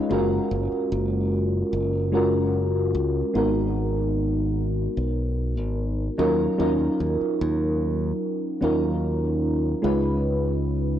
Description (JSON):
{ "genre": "vaporwave", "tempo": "74 BPM", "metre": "4/4", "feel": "straight", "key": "G# dorian", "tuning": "A4 = 440 Hz", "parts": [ { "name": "mellow FM electric piano", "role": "accompaniment", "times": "0.0-11.0 s", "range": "F#3 to B4", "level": "-23 LUFS", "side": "equal", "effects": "lush chorus, tape echo" }, { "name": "modern bright fingered electric bass", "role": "bass", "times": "0.1-11.0 s", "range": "F#1 to D#2", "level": "-26 LUFS", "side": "equal", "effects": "none" } ], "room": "light reverb", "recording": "dry, gritty hardware recording, cassette tape", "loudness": "-22 LUFS", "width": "side -10 dB against mid", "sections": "0.0-3.4 A section; 3.4-11.0 B section", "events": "none", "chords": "0.1 F#maj9; 3.4 G#m9; 6.2 D#m9; 9.8 C#9" }